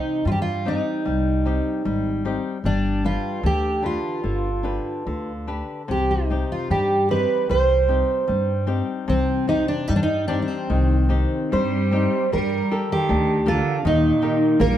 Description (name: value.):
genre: fado-style ballad.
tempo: 71-82 BPM.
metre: 2/4.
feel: rubato.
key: C harmonic minor.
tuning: A4 = 440 Hz.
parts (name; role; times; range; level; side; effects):
fingerpicked twelve-string acoustic guitar; melody; 0.0-14.8 s; C4 to C5; -22 LUFS; right 2 dB; plate reverb.
flamenco guitar; accompaniment; 0.0-14.8 s; C3 to B4; -26 LUFS; left 4 dB; none.
upright bass; bass; 0.3-14.8 s; G1 to G2; -24 LUFS; equal; none.
clear cello; second line; 11.5-14.8 s; Bb2 to G3; -26 LUFS; right 4 dB; none.
room: light reverb.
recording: none.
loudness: -19 LUFS.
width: side -11 dB against mid.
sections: 0.0-12.3 A section; 12.3-14.8 B section.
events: none.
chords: 0.0 Cm; 2.6 G; 5.9 Cm; 12.3 Gmadd9; 13.9 Eb.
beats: 0.26 | 1.07 1.87 | 2.65 3.44 | 4.24 5.07 | 5.90 6.71 | 7.51 8.29 | 9.08 9.88 | 10.69 11.52 | 12.34 13.10 | 13.86 14.60.